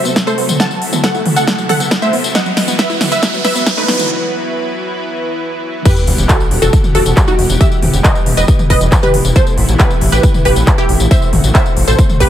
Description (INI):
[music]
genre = uplifting trance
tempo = 137 BPM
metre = 4/4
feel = straight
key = E harmonic minor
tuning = A4 = 440 Hz
[part]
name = wide unison pluck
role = melody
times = 0.0-12.3 s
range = D#4 to A5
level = -18 LUFS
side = right 1 dB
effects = analog chorus, sidechain pumping, dub echo
[part]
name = wide unison pluck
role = second line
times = 0.0-12.3 s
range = F#4 to A5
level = -23 LUFS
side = equal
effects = cassette tape, sidechain pumping, dub echo
[part]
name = lush unison pad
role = sustained chords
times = 0.0-12.3 s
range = B2 to F#5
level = -21 LUFS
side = equal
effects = chorus, sidechain pumping
[part]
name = riser and sub drop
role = sound effects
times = 1.0-7.6 s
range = none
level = -22 LUFS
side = right 1 dB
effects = none
[part]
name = wide unison pluck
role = arpeggios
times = 0.1-3.9 s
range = E3 to E4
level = -22 LUFS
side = right 2 dB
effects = sidechain pumping
[part]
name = big-room dance drum kit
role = drums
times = 0.1-12.3 s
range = crash cymbal, handclaps, hi-hat, snare drum, tambourine, toms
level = -17 LUFS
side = left 1 dB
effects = overdrive
[part]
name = electronic kick drum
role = drums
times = 0.2-12.3 s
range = none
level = -12 LUFS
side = equal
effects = overdrive, high-pass filter on kick
[part]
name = gritty driven synth bass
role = bass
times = 6.1-12.3 s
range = E1 to A1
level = -14 LUFS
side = equal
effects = sidechain pumping
[sound]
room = light reverb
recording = high-pass filter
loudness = -10 LUFS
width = side -11 dB against mid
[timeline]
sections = 0.0-5.9 A section; 5.9-12.3 B section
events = build-up 0.0-5.9; drum fill 0.0-4.1; filter sweep on synth arpeggio sound 0.0-5.9; riser 1.0-4.1; break 4.1-5.9; drop 5.9-12.3; impact 5.9-7.6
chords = 0.0 F#dim; 2.4 Bsus4; 5.9 Emadd9; 9.4 Amadd9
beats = 0.16 | 0.60 1.04 1.48 1.91 | 2.35 2.79 3.23 3.67 | 4.10 4.54 4.98 5.42 | 5.85 6.29 6.73 7.17 | 7.61 8.04 8.48 8.92 | 9.36 9.80 10.23 10.67 | 11.11 11.55 11.99